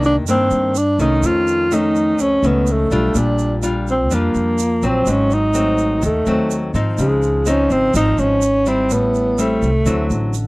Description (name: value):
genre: bossa nova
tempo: 125 BPM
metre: 4/4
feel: straight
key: unclear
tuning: A4 = 440 Hz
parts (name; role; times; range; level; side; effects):
- breathy tenor saxophone; melody; 0.0-10.4 s; Ab3 to F4; -17 LUFS; equal; none
- nylon-string guitar; accompaniment; 0.0-10.5 s; F2 to F4; -20 LUFS; left 2 dB; none
- upright bass; bass; 0.0-10.5 s; Ab1 to Ab2; -21 LUFS; equal; none
- egg shaker; percussion; 0.0-10.5 s; none; -31 LUFS; right 14 dB; none
room: light reverb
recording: dry, close 1970s-style studio recording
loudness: -14 LUFS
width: side -22 dB against mid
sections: 0.0-7.0 A section; 7.0-10.5 B section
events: none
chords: 0.0 Cm9; 1.2 Faug7; 3.2 Bb6; 5.1 Ab7b9; 7.0 Dbmaj9; 8.9 Am7; 9.9 D9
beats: 0.28 0.76 | 1.24 1.72 2.19 2.67 | 3.15 3.63 4.11 4.59 | 5.07 5.55 6.03 6.50 | 6.98 7.46 7.94 8.42 | 8.90 9.38 9.86 10.34